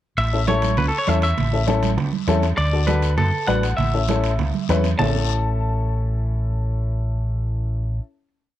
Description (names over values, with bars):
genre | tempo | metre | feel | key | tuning
latin, cumbia | 199 BPM | 4/4 | straight | A major | A4 = 443 Hz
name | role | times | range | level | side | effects
clean electric guitar | melody | 0.2-8.0 s | A4 to A5 | -25 LUFS | equal | spring reverb
fingered electric bass | bass | 0.2-8.0 s | A1 to F#2 | -21 LUFS | equal | none
congas | percussion | 0.2-5.1 s | none | -25 LUFS | right 7 dB | none
guiro | percussion | 0.2-5.1 s | none | -35 LUFS | left 23 dB | none
timbales | percussion | 0.2-5.1 s | none | -33 LUFS | right 9 dB | none
clear upright piano | accompaniment | 0.3-8.0 s | C#4 to B4 | -25 LUFS | left 6 dB | none
room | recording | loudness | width
little or no reverb | dry, close 1970s-style studio recording | -18 LUFS | side -13 dB against mid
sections
0.2-5.0 A section; 5.0-7.4 final chord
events
none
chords
0.2 A; 2.6 D; 3.8 A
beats
| 0.18 0.48 0.78 1.08 | 1.38 1.68 1.98 2.28 | 2.58 2.88 3.18 3.48 | 3.79 4.09 4.39 4.69 | 4.99 5.29 5.59 5.89 | 6.20 6.50 6.80 7.10